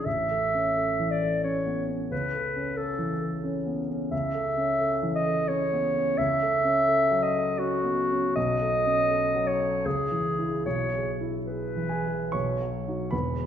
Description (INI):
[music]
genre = classical, romantic duo for clarinet and grand piano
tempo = 66-92 BPM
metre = 3/4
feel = rubato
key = A major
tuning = A4 = 440 Hz
[part]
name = mellow clarinet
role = melody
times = 0.0-12.7 s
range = F#4 to E5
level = -26 LUFS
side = equal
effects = none
[part]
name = warm concert grand piano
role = accompaniment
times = 0.0-13.5 s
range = E1 to C#6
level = -28 LUFS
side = equal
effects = none
[sound]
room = wet scoring stage reverb, RT60 1.5 s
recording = minimal, uncompressed stereo recording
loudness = -24 LUFS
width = side -9 dB against mid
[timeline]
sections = 0.0-13.1 A section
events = none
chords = 0.1 A; 2.1 A/C#; 6.2 F#m7/C#; 8.4 B9; 9.9 C#m; 10.6 E/B; 12.3 B